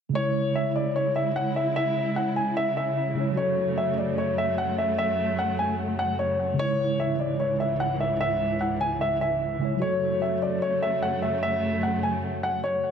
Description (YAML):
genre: hip hop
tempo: 149 BPM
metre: 4/4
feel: half-time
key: F# minor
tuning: A4 = 440 Hz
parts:
  - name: mellow tine electric piano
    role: accompaniment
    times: 0.1-12.9 s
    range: C#3 to C#5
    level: -29 LUFS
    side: right 1 dB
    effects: medium stereo tremolo, analog delay
  - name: dark baby grand piano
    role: melody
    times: 0.2-12.9 s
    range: C#5 to G#5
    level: -26 LUFS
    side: left 1 dB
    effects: analog delay
  - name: dark symphonic string section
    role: sustained chords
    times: 0.2-12.9 s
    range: C#2 to E4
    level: -30 LUFS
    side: equal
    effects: none
room: moderate echo chamber reverb, RT60 1.7 s, studio ambience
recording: echo-heavy mix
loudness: -23 LUFS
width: side -7 dB against mid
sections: 0.2-12.9 A section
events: none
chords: 0.2 C#m; 3.4 F#m; 6.6 C#m; 9.8 F#m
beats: | 0.15 0.56 0.96 1.36 | 1.76 2.17 2.57 2.97 | 3.37 3.78 4.18 4.58 | 4.98 5.39 5.79 6.19 | 6.59 7.00 7.40 7.80 | 8.21 8.61 9.01 9.41 | 9.82 10.22 10.62 11.02 | 11.43 11.83 12.23 12.63